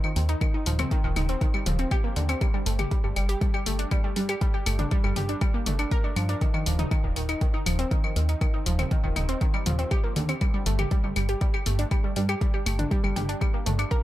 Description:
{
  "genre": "melodic techno",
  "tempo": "120 BPM",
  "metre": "4/4",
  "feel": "straight",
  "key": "G minor",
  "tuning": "A4 = 442 Hz",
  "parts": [
    { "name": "wide unison pluck", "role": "arpeggios", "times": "0.0-14.0 s", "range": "D3 to Bb4", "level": "-30 LUFS", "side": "equal", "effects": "sidechain pumping, dub echo" },
    { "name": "deep house drum kit", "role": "drums", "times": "0.0-14.0 s", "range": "claves, hi-hat, toms", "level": "-32 LUFS", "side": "left 2 dB", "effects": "tape echo" },
    { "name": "plucky analog bass", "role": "bass", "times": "0.2-13.9 s", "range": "Eb1 to G2", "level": "-26 LUFS", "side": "equal", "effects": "sidechain pumping" },
    { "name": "electronic kick drum", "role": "drums", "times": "0.4-14.0 s", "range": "none", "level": "-25 LUFS", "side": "equal", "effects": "none" }
  ],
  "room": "light reverb",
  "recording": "echo-heavy mix",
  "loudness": "-23 LUFS",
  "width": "side -14 dB against mid",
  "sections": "0.0-14.0 A section",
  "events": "none",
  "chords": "none"
}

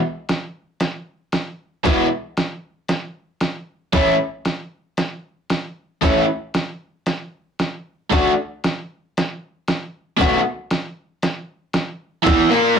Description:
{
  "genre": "garage rock duo or trio",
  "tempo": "115 BPM",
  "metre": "4/4",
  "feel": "straight",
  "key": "E mixolydian",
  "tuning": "A4 = 438 Hz",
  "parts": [
    { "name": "lo-fi sampler-style drum kit", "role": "drums", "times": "0.3-12.6 s", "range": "crash cymbal, hi-hat, kick drum, ride cymbal, snare drum", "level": "-21 LUFS", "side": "right 1 dB", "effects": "none" },
    { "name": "overdriven electric guitar", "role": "riff", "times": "1.8-12.8 s", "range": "E2 to F#4", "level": "-16 LUFS", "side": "equal", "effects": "none" }
  ],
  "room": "moderate small room reverb, RT60 0.6 s",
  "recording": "rough rehearsal-room recording, warm saturation",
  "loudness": "-19 LUFS",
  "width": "side -7 dB against mid",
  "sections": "0.0-12.3 A section",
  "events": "none",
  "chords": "0.0 E; 3.9 A; 8.1 D; 10.2 B7; 12.3 E5"
}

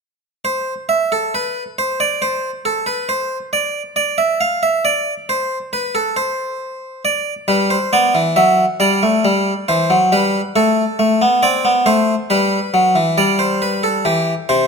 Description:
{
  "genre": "classical, baroque-style two-part invention for harpsichord",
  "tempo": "68 BPM",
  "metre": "4/4",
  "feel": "straight",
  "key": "C major",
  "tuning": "A4 = 440 Hz",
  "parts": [
    { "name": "harpsichord", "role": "solo", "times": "0.4-14.7 s", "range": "C3 to F5", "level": "-14 LUFS", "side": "equal", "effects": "none" }
  ],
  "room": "moderate recital hall reverb, RT60 1.4 s",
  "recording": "close, detailed microphones",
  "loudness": "-14 LUFS",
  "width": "side -5 dB against mid",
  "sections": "0.0-14.7 A section",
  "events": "none",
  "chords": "0.0 N.C.; 7.1 G; 8.8 C/G; 10.6 D5/A; 12.3 G; 14.1 C"
}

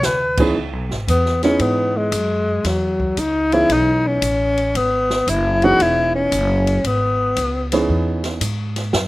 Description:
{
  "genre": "jazz, small-group swing and bop",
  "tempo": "114 BPM",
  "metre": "4/4",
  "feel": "swing 67% on 8ths",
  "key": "C# minor",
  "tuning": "A4 = 445 Hz",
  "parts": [
    { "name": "breathy tenor saxophone", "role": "melody", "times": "0.0-7.7 s", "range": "F#3 to B4", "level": "-18 LUFS", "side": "left 1 dB", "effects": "slapback echo" },
    { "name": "upright bass", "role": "bass", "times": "0.0-9.1 s", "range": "E1 to G#2", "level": "-22 LUFS", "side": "equal", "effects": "none" },
    { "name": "open jazz drum kit", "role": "drums", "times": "0.0-9.1 s", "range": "crash cymbal, hi-hat, kick drum, ride cymbal, snare drum", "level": "-26 LUFS", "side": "equal", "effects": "none" },
    { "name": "warm upright piano", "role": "accompaniment", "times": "0.4-8.4 s", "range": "E3 to G#4", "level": "-20 LUFS", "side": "right 2 dB", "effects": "slapback echo" }
  ],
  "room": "little or no reverb",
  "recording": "recorded outdoors, with no room sound",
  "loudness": "-16 LUFS",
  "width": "side -18 dB against mid",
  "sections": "0.6-9.1 A section",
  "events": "tenor saxophone solo 0.6-9.1",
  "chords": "0.0 C#m7"
}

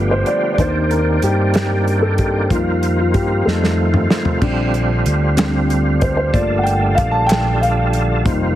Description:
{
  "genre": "slow gospel",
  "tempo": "62 BPM (dotted quarters)",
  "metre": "6/8",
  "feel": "straight",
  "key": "unclear",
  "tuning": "A4 = 440 Hz",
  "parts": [
    { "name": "dark grand piano", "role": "accompaniment", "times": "0.0-8.6 s", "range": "Eb3 to A5", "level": "-19 LUFS", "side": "left 1 dB", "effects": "none" },
    { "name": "overdriven tonewheel organ", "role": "sustained chords", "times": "0.0-8.6 s", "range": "D3 to A4", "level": "-21 LUFS", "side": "right 2 dB", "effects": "slow rotary speaker, chorus vibrato" },
    { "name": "fingered electric bass", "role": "bass", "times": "0.0-8.6 s", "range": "F1 to G2", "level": "-18 LUFS", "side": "equal", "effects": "none" },
    { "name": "warm soul drum kit", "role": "drums", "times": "0.3-8.4 s", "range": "crash cymbal, hi-hat, kick drum, snare drum, toms", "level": "-20 LUFS", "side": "equal", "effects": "none" },
    { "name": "group handclap", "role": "percussion", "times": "5.4-7.6 s", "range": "none", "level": "-28 LUFS", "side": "left 1 dB", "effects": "none" }
  ],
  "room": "light reverb, small room ambience",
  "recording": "heavily compressed radio sound, multiband compression",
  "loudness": "-14 LUFS",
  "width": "side -13 dB against mid",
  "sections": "0.0-8.6 A section",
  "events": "grand piano solo 0.0-8.6; drum fill 3.5-4.4",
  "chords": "0.0 G7; 0.6 Cm9/Eb; 2.5 F7sus4; 3.5 F7; 4.4 Bb69; 6.3 Gm9"
}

